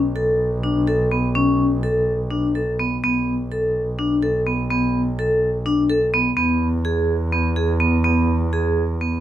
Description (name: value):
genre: contemporary instrumental, chamber music in an uneven meter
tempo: 251 BPM (eighths)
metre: 7/8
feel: straight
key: B dorian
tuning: A4 = 440 Hz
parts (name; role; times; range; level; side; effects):
- rich double bass; bass; 0.0-9.2 s; B1 to E2; -23 LUFS; right 1 dB; none
- vibraphone with hard mallets; arpeggios; 0.2-9.2 s; B3 to A4; -19 LUFS; equal; none
room: light reverb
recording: close, detailed microphones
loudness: -18 LUFS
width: side -12 dB against mid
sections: 0.0-9.2 A section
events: none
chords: 0.0 N.C.; 3.0 B7(no3); 6.4 E